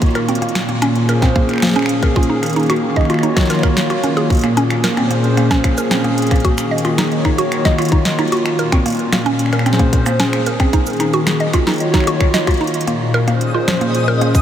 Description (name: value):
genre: IDM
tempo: 112 BPM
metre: 4/4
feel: straight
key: Bb minor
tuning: A4 = 441 Hz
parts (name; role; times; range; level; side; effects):
- hollow soft pad; sustained chords; 0.0-14.4 s; Bb2 to Db5; -17 LUFS; left 1 dB; chorus
- booming analog drum machine; drums; 0.0-14.4 s; finger snaps, hi-hat, shaker, snare drum; -21 LUFS; equal; overdrive, tape echo
- electronic kick drum; drums; 0.0-14.4 s; none; -15 LUFS; equal; none
- mallet-like synth pluck; arpeggios; 0.2-14.3 s; F3 to Eb5; -19 LUFS; right 1 dB; chorus, analog delay
- twinkling granular texture; texture; 13.5-14.4 s; Eb5; -24 LUFS; left 3 dB; built-in reverb, ensemble chorus
room: wet huge ambient reverb, RT60 7.1 s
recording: dreamy mix soaked in reverb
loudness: -13 LUFS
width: side -10 dB against mid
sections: 0.0-12.9 A section; 12.9-14.4 B section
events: drum fill 12.6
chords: 0.0 Bbm7; 2.2 Ebm7; 4.3 Bbm7; 6.4 Ebm7; 8.6 Bbm7; 10.7 Ebm7; 12.9 Bbm7